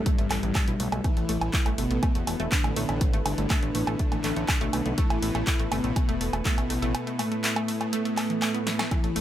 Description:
melodic techno; 122 BPM; 4/4; straight; A4 = 442 Hz
soft octave-layered synth lead; melody; 0.0-9.2 s; G3 to E4; -32 LUFS; left 2 dB; chorus, sidechain pumping, digital delay
soft supersaw; second line; 0.0-9.2 s; G2 to E3; -35 LUFS; equal; sidechain pumping, digital delay
evolving wavetable pad; sustained chords; 0.0-9.2 s; B3 to E5; -37 LUFS; right 3 dB; chorus, built-in reverb, sidechain pumping
fat analog bass; bass; 0.0-9.2 s; E1 to B1; -30 LUFS; equal; sidechain pumping
wide unison pluck; arpeggios; 0.1-9.2 s; E3 to A4; -33 LUFS; right 1 dB; sidechain pumping, digital delay
electronic kick drum; drums; 0.1-9.0 s; -25 LUFS; equal
punchy analog drum machine; drums; 0.1-9.2 s; handclaps, hi-hat, snare drum, woodblock; -30 LUFS; right 1 dB
swell; sound effects; 8.2-8.9 s; -38 LUFS; right 5 dB
little or no reverb; -24 LUFS; side -12 dB against mid
0.0-9.2 A section
swell 8.2-8.9; drum fill 8.7
0.0 Asus2
0.06 0.55 | 1.04 1.54 2.03 2.52 | 3.01 3.50 4.00 4.49 | 4.98 5.47 5.96 6.46 | 6.95 7.44 7.93 8.42 | 8.91

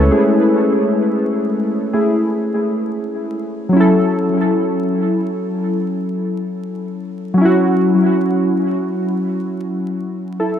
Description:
hip hop; 66 BPM; 4/4; swing 62% on 16ths; F# minor; A4 = 439 Hz
warbly lo-fi synth keys; accompaniment; 0.0-10.6 s; F#3 to C#5; -15 LUFS; equal; chorus, cassette tape, low-pass filter, tape echo
moderate plate reverb, RT60 3.0 s; echo-heavy mix, vinyl crackle; -15 LUFS; side -9 dB against mid
0.0-3.8 A section; 3.8-10.6 B section
synth keys solo 0.0-3.8
0.0 F#m7 (rootless); 3.8 F#m7
| 0.12 1.03 1.94 2.85 | 3.75 4.66 5.57 6.48 | 7.39 8.30 9.21 10.12

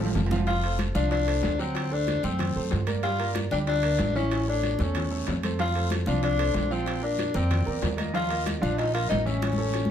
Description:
latin, salsa; 188 BPM; 4/4; straight; A4 = 440 Hz
mellow tenor saxophone; melody; 0.0-9.9 s; C4 to F4; -28 LUFS; left 3 dB
clear grand piano; accompaniment; 0.0-9.8 s; E3 to G5; -32 LUFS; right 4 dB
upright bass; bass; 0.0-9.8 s; F1 to G2; -28 LUFS; equal
bongos; percussion; 0.0-9.9 s; -37 LUFS; left 7 dB
congas; percussion; 0.1-9.9 s; -34 LUFS; left 1 dB
timbales; percussion; 0.1-9.9 s; -36 LUFS; right 6 dB
guiro; percussion; 0.2-9.9 s; -42 LUFS; left 6 dB
wet studio reverb, RT60 0.6 s; heard from further back in the room; -24 LUFS; side -9 dB against mid
0.5-9.9 A section
drum fill 0.0-0.5, 9.4-9.9
0.5 F; 1.8 D7; 3.0 Gm7; 4.3 A; 5.6 F; 6.9 Bb; 8.1 Ebsus2
0.15 | 0.47 0.79 1.11 1.43 | 1.75 2.07 2.39 2.71 | 3.03 3.35 3.67 3.99 | 4.31 4.63 4.95 5.27 | 5.59 5.91 6.23 6.55 | 6.87 7.19 7.51 7.83 | 8.15 8.47 8.79 9.11 | 9.43 9.75

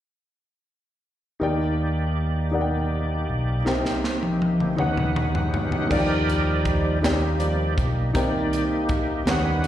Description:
slow gospel; 54 BPM (dotted quarters); 6/8; straight; Eb major; A4 = 440 Hz
warm upright piano; accompaniment; 1.4-9.7 s; C3 to G5; -28 LUFS; left 2 dB; slapback echo
bright tonewheel organ; sustained chords; 1.4-9.7 s; Eb3 to F#5; -26 LUFS; right 1 dB; fast rotary speaker, overdrive, chorus vibrato
fingered electric bass; bass; 1.4-9.7 s; Cb2 to Eb2; -25 LUFS; equal
crisp fusion drum kit; drums; 3.7-9.7 s; crash cymbal, hi-hat, kick drum, snare drum, toms; -26 LUFS; equal
light reverb, small room ambience; live gig heard through the venue's PA, recital hall reverb; -21 LUFS; side -12 dB against mid
1.4-5.9 A section; 5.9-9.7 B section
drum fill 3.7-5.9; tonewheel organ solo 5.9-9.7
1.4 Ebmaj7; 3.7 Cm7; 4.8 Eb7alt; 5.9 Ebmaj7; 8.2 Cm7
| 1.42 2.54 | 3.66 4.79 | 5.91 7.03 | 8.15 9.27

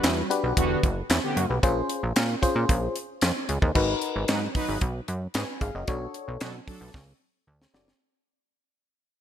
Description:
early-eighties boogie funk; 113 BPM; 4/4; straight; A4 = 440 Hz
analog synth brass; second line; 0.0-6.9 s; D3 to B4; -31 LUFS; right 1 dB; chorus
FM electric piano; accompaniment; 0.0-7.9 s; C#4 to G#5; -29 LUFS; left 3 dB; chorus
plucky analog bass; bass; 0.0-7.9 s; E1 to B2; -28 LUFS; right 1 dB
tight funk drum kit; drums; 0.0-8.0 s; crash cymbal, handclaps, hi-hat, kick drum, snare drum; -26 LUFS; equal; gated reverb
light reverb, small room ambience; bright 1980s-style digital production; -24 LUFS; side -10 dB against mid
0.0-3.8 A section; 3.8-8.0 B section
fade-out 3.8-8.0; drum fill 6.9-8.0
0.0 Em9; 1.6 A#m9; 3.8 G#m9; 5.9 Bm9
0.04 0.57 1.10 | 1.63 2.16 2.69 3.23 | 3.76 4.29 4.82 5.35 | 5.88 6.41 6.94 7.47

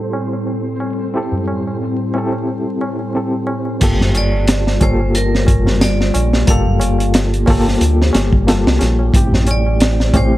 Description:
trip hop; 90 BPM; 4/4; swing 56% on 16ths; A4 = 442 Hz
reed electric piano; accompaniment; 0.0-10.4 s; A3 to A4; -21 LUFS; left 1 dB; overdrive, fast tremolo, tape echo
warbly tape-like pad; sustained chords; 0.0-10.4 s; A2 to A5; -23 LUFS; left 1 dB; chorus, built-in reverb, vintage 12-bit sampler grit
flickering grainy texture; texture; 0.0-10.4 s; G3 to C5; -32 LUFS; left 1 dB
tabla; percussion; 0.1-10.4 s; -25 LUFS; equal
round analog bass; bass; 3.8-10.4 s; G1 to D2; -16 LUFS; equal
crunchy breakbeat drum kit; drums; 3.8-10.3 s; crash cymbal, hi-hat, kick drum, snare drum; -16 LUFS; equal
vibraphone with hard mallets; melody; 4.2-10.4 s; Bb4 to F5; -24 LUFS; right 3 dB; dub echo
small room ambience; vinyl crackle, low-pass filter; -13 LUFS; side -15 dB against mid
0.0-3.8 A section; 3.8-10.4 B section
filter sweep on reed electric piano 0.0-3.8; filter sweep 0.0-3.8
0.0 Am7; 3.8 Gm9; 9.1 Am7
0.48 | 1.15 1.81 2.48 3.15 | 3.81 4.48 5.15 5.81 | 6.48 7.15 7.81 8.48 | 9.15 9.81

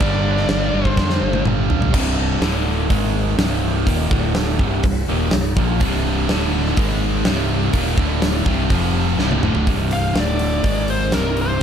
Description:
hard rock; 124 BPM; 4/4; straight; C minor; A4 = 441 Hz
bluesy overdriven lead guitar; melody; 0.0-1.4, 9.9-11.6 s; Bb4 to F5; -24 LUFS; left 2 dB; distortion
distorted electric guitar; riff; 0.0-11.6 s; C2 to Bb3; -25 LUFS; right 15 dB; overdrive
overdriven semi-hollow guitar; riff; 0.0-11.6 s; C2 to Bb3; -24 LUFS; left 11 dB
scooped high-gain guitar; riff; 0.0-1.9, 5.8-9.7 s; C2 to Ab3; -27 LUFS; right 1 dB; distortion
overdriven fingered electric bass; bass; 0.0-11.6 s; C1 to F2; -22 LUFS; equal
huge arena drum kit; drums; 0.0-11.6 s; crash cymbal, hi-hat, kick drum, snare drum, toms; -21 LUFS; equal
light reverb; -16 LUFS; side -8 dB against mid
0.0-1.9 A section; 1.9-9.7 B section; 9.7-11.6 C section
drum fill 1.0-1.9, 9.2-9.7; lead electric guitar solo 9.7-11.6
0.0 G5; 1.9 C5; 2.4 D5; 2.9 Ab5; 3.4 Cm; 4.1 D5; 4.6 Cm; 6.3 D5; 6.8 Ab5; 7.3 Cm; 8.0 D5; 8.5 C5; 8.7 F5; 9.2 C5; 10.2 D5; 10.6 Ab5
| 0.01 0.49 0.98 1.46 | 1.94 2.43 2.91 3.39 | 3.88 4.36 4.84 5.33 | 5.81 6.29 6.77 7.26 | 7.74 8.22 8.71 9.19 | 9.68 10.16 10.64 11.13 | 11.62

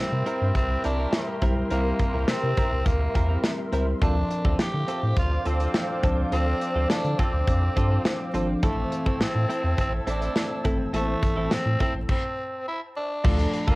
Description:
1980s-style pop; 104 BPM; 4/4; straight; D minor; A4 = 440 Hz
raspy tenor saxophone; melody; 0.0-13.8 s; A3 to G4; -30 LUFS; equal; cassette tape
FM electric piano with soft pad layer; accompaniment; 0.0-13.8 s; E3 to C5; -31 LUFS; left 1 dB; chorus, cassette tape
ethereal airy pad; sustained chords; 0.0-13.8 s; A4 to E6; -36 LUFS; left 1 dB; ensemble chorus, built-in reverb, cassette tape
clear horn section; stabs; 0.0-11.8 s; C4 to Bb4; -37 LUFS; left 1 dB; cassette tape
warm sub bass; bass; 0.0-13.8 s; G#1 to D3; -26 LUFS; equal
direct-recorded clean electric guitar; riff; 0.1-13.8 s; C4 to Bb4; -34 LUFS; right 2 dB; wide subtle chorus, cassette tape
modern studio drum kit; drums; 0.3-13.8 s; crash cymbal, hi-hat, kick drum, snare drum; -26 LUFS; equal
moderate studio reverb, RT60 0.6 s; home recording on cassette, vinyl crackle; -22 LUFS; side -22 dB against mid
0.0-13.2 A section
stop 12.1-13.2
0.0 C7; 4.0 Dm7; 8.6 Am; 13.2 Dm
0.55 1.13 | 1.71 2.28 2.86 3.44 | 4.01 4.59 5.17 5.74 | 6.32 6.90 7.47 8.05 | 8.63 9.21 9.78 10.36 | 10.94 11.51 12.09 12.67 | 13.24

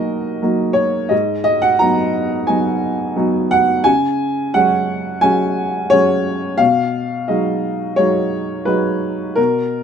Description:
neoclassical minimalist piano; 87 BPM; 4/4; rubato; G# dorian; A4 = 440 Hz
warm upright piano; solo; 0.0-9.8 s; G#2 to A#5; -15 LUFS; equal
light reverb; minimal, uncompressed stereo recording; -14 LUFS; side -7 dB against mid
0.0-9.8 A section
0.0 Bmaj7; 1.1 G#m7; 3.9 C#sus4; 6.6 G#m7/B
0.43 | 1.11 1.80 2.48 3.17 | 3.85 4.54 5.22 5.90 | 6.59 7.29 7.98 8.67 | 9.37

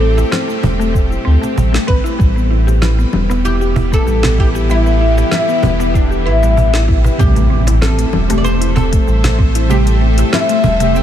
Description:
organic downtempo; 96 BPM; 4/4; swing 54% on 16ths; A minor; A4 = 440 Hz
oud; melody; 0.0-11.0 s; D4 to D5; -20 LUFS; left 2 dB; vintage 12-bit sampler grit, tape echo
bowed-like drone; sustained chords; 0.0-11.0 s; E3 to E5; -21 LUFS; left 1 dB; built-in reverb, sidechain pumping
mallet-like synth pluck; arpeggios; 0.0-11.0 s; G3 to B4; -20 LUFS; left 1 dB; chorus, diffuse ambient delay
warm sub bass; bass; 0.0-11.0 s; E1 to D2; -14 LUFS; equal; tube saturation
deep house drum kit; drums; 0.2-11.0 s; cabasa, congas, hi-hat, snare drum; -23 LUFS; left 2 dB; studio reverb
cajon; percussion; 0.2-10.9 s; -22 LUFS; right 3 dB
electronic kick drum; drums; 0.9-9.5 s; -14 LUFS; equal; studio reverb
deep mellow chord stab; accompaniment; 7.2-11.0 s; C3 to G4; -21 LUFS; right 5 dB; chorus, sidechain pumping, diffuse ambient delay
impact; sound effects; 7.2-9.7 s; -23 LUFS; equal
moderate huge ambient reverb, RT60 7.2 s; dreamy mix soaked in reverb; -11 LUFS; side -10 dB against mid
0.0-7.2 A section; 7.2-11.0 B section
impact 7.2-9.7
0.0 Am7; 2.2 Em; 7.2 Am7
0.32 0.95 1.57 | 2.20 2.82 3.45 4.07 | 4.70 5.32 5.95 6.57 | 7.20 7.82 8.45 9.07 | 9.70 10.32 10.95

